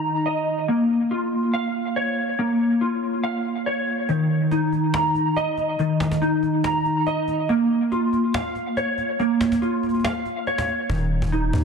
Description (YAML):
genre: hip hop, trap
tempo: 141 BPM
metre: 4/4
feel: half-time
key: unclear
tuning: A4 = 440 Hz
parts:
  - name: mellow electric guitar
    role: arpeggios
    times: 0.0-11.6 s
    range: Eb3 to Bb5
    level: -20 LUFS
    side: equal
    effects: ensemble chorus, low-pass filter, tape echo
  - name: cajon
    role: drums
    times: 4.1-11.6 s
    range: none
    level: -30 LUFS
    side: equal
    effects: none
  - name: long sustained 808-style bass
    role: bass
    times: 10.9-11.6 s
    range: Eb1 to Eb2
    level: -23 LUFS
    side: equal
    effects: none
room: moderate lush hall reverb, RT60 1.5 s, small room ambience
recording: dense, heavily limited modern master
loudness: -20 LUFS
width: side -6 dB against mid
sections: 0.0-4.1 A section; 4.1-11.6 B section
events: kick muted 4.1-10.9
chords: 0.0 Eb5; 0.7 Bbm; 4.1 Eb5; 7.5 Bbm; 10.9 N.C.